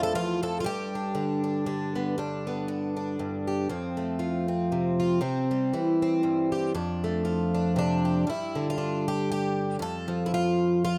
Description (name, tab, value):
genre	folk, solo fingerstyle acoustic guitar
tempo	118 BPM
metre	3/4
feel	swing 56% on 8ths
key	G mixolydian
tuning	A4 = 440 Hz
part	picked plugged-in twelve-string acoustic guitar	solo	0.0-11.0 s	E2 to A4	-28 LUFS	equal	none
room	little or no reverb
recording	recorded outdoors, with no room sound, faint mains hum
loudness	-28 LUFS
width	mono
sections	0.0-2.2 A section; 2.2-8.3 B section; 8.3-11.0 C section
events	none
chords	0.0 F; 0.7 G; 3.7 F; 5.2 C; 6.7 F6; 8.3 G5; 9.8 N.C.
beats	0.16 | 0.66 1.17 1.67 | 2.18 2.69 3.19 | 3.70 4.21 4.71 | 5.22 5.73 6.24 | 6.75 7.25 7.76 | 8.27 8.78 9.28 | 9.79 10.30 10.81